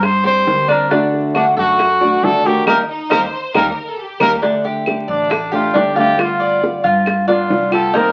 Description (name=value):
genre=latin, Cuban son and guajira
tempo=136 BPM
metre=4/4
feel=straight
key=G minor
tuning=A4 = 440 Hz
part: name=bright trumpet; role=melody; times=0.0-8.1 s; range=D4 to C5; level=-18 LUFS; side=equal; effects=none
part: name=flamenco guitar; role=accompaniment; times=0.0-8.1 s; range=C3 to G4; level=-22 LUFS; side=equal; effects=none
part: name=Cuban tres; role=arpeggios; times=0.0-8.1 s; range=D4 to D5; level=-20 LUFS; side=equal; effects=none
part: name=upright bass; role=bass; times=0.0-8.1 s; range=G1 to G2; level=-27 LUFS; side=equal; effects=none
part: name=bongos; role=percussion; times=0.0-8.1 s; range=none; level=-26 LUFS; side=equal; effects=none
part: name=claves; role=percussion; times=0.0-7.9 s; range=none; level=-26 LUFS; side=equal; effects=none
part: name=bright symphonic violin section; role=second line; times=2.9-4.4 s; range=Eb4 to C5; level=-28 LUFS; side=equal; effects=none
room=wet studio reverb, RT60 0.6 s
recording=very old 78 rpm record, vinyl crackle, nothing above 7.5 kHz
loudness=-15 LUFS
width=mono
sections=0.0-4.4 A section; 4.4-8.1 B section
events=band accent 2.7-4.4; drum fill 4.2; trumpet solo 4.4-8.1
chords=0.0 Cm; 0.9 D; 2.7 Eb; 4.4 Dsus4; 6.2 G7